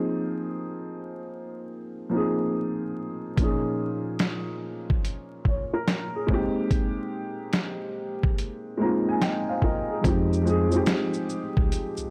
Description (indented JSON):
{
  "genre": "lo-fi hip hop",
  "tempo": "72 BPM",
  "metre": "4/4",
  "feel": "swing 64% on 16ths",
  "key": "F minor",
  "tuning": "A4 = 441 Hz",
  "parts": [
    { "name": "dark upright piano", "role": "accompaniment", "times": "0.0-12.1 s", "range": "Bb2 to Bb5", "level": "-29 LUFS", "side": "equal", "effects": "cassette tape, low-pass filter" },
    { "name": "boom bap sampler-style drum kit", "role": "drums", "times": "3.4-12.1 s", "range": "hi-hat, kick drum, shaker, snare drum", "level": "-28 LUFS", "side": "equal", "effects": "none" },
    { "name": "tine electric piano", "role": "bass", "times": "10.0-12.0 s", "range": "C2 to F2", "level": "-29 LUFS", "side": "equal", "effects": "overdrive, tube saturation" }
  ],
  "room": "little or no reverb",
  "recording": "dry, gritty hardware recording, vinyl crackle",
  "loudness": "-27 LUFS",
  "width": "mono",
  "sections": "0.0-10.0 A section; 10.0-12.1 B section",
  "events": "upright piano fill 8.4-10.0",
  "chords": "0.0 Bb9sus4; 3.4 Eb7sus4/Bb; 6.3 Abmaj9; 10.0 Fm7"
}